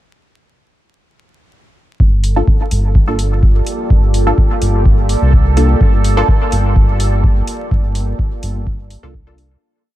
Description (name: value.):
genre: dub techno.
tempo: 126 BPM.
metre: 4/4.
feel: straight.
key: G minor.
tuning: A4 = 440 Hz.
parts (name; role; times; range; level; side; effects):
deep dark ambient pad; sustained chords; 2.8-9.6 s; Bb3 to D5; -23 LUFS; left 1 dB; chorus, built-in reverb, sidechain pumping.
round analog bass; bass; 2.0-9.6 s; G1 to C2; -14 LUFS; equal; sidechain pumping.
electronic kick drum; drums; 2.0-9.2 s; none; -13 LUFS; equal; none.
bubbling stepped-filter texture; texture; 2.0-9.6 s; A4; -26 LUFS; right 5 dB; chorus, built-in reverb, sidechain pumping.
electronic hi-hat; drums; 2.2-9.5 s; none; -27 LUFS; equal; overdrive.
filtered dub chord stab; stabs; 2.4-9.6 s; Bb3 to A4; -21 LUFS; equal; chorus, phaser, sidechain pumping, dub echo.
room: digital ambience.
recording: dark, warm production, vinyl crackle.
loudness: -11 LUFS.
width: side -15 dB against mid.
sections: 2.0-9.6 groove.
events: filter sweep on synth stab 2.0-9.6; fade-out 7.1-9.6.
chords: 2.0 Gm7.